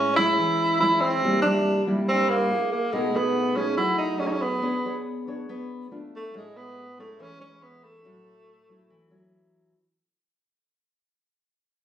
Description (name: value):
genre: bossa nova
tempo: 141 BPM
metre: 4/4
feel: straight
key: A major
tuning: A4 = 442 Hz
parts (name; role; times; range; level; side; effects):
- breathy tenor saxophone; melody; 0.0-9.3 s; G#3 to E4; -23 LUFS; right 1 dB; plate reverb
- nylon-string guitar; accompaniment; 0.0-9.7 s; G2 to C#5; -27 LUFS; equal; none
room: moderate studio reverb, RT60 0.5 s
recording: recorded on a phone in the room, studio reverb, compression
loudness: -21 LUFS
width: side -10 dB against mid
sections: 0.0-9.8 A section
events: fade-out 0.0-9.8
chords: 0.0 Amaj7; 1.2 C7; 2.5 G#sus2/A#; 2.9 B6; 4.6 Bm69; 5.9 Dm/A; 6.3 Amaj7; 8.1 A6